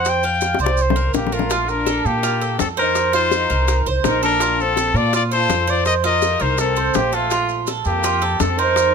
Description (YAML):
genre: latin, Cuban son and guajira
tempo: 165 BPM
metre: 4/4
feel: straight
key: Bb major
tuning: A4 = 440 Hz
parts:
  - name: trumpet with straight mute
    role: melody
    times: 0.0-8.9 s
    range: F4 to G5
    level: -20 LUFS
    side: left 5 dB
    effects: none
  - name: Cuban tres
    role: arpeggios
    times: 0.0-8.9 s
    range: F4 to F5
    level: -21 LUFS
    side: right 7 dB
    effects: none
  - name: upright bass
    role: bass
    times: 0.0-8.9 s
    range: Bb1 to Bb2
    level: -23 LUFS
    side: equal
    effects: none
  - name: bongos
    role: percussion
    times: 0.1-8.9 s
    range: none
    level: -24 LUFS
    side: left 8 dB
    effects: none
  - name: maracas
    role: percussion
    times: 0.1-8.9 s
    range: none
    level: -32 LUFS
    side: right 7 dB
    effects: none
  - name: clear studio violin section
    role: second line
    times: 1.1-8.9 s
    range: A3 to Bb4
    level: -26 LUFS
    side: left 2 dB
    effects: none
room: light reverb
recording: close, detailed microphones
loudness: -16 LUFS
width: side -6 dB against mid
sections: 0.0-1.5 A section; 1.5-8.9 B section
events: muted trumpet solo 0.0-1.5; drum fill 0.4-1.5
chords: 0.0 Fsus4; 1.5 Bbmaj7sus2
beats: | 0.05 0.41 0.78 1.14 | 1.50 1.86 2.23 2.59 | 2.95 3.32 3.68 4.04 | 4.41 4.77 5.13 5.50 | 5.86 6.22 6.59 6.95 | 7.31 7.68 8.04 8.40 | 8.77